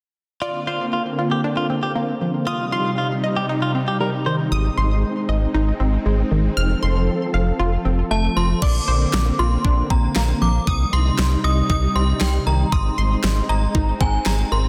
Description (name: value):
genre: synth-pop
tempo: 117 BPM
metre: 4/4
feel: straight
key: Bb major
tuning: A4 = 440 Hz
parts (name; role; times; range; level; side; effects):
- direct-recorded clean electric guitar; second line; 0.4-4.3 s; F4 to C5; -28 LUFS; equal; tape echo
- string machine, violas; sustained chords; 0.4-14.7 s; C3 to A4; -27 LUFS; equal; ensemble chorus
- analog pluck; arpeggios; 0.4-14.7 s; Eb3 to F6; -29 LUFS; equal; chorus, tape echo
- round analog bass; bass; 4.5-14.7 s; F1 to C2; -22 LUFS; equal; none
- synth chime; melody; 8.1-14.7 s; G5 to Eb6; -27 LUFS; equal; ensemble chorus, phaser, tape echo
- pop drum kit; drums; 8.6-14.4 s; crash cymbal, kick drum, snare drum; -26 LUFS; equal; none
room: moderate concert hall reverb, RT60 2.4 s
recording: dense, heavily limited modern master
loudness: -20 LUFS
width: mono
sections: 0.4-8.6 A section; 8.6-14.7 B section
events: none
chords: 0.4 Bbadd9; 2.5 Cm; 4.5 Ab; 6.6 F; 8.6 Bbadd9; 10.7 Cm; 12.7 Ab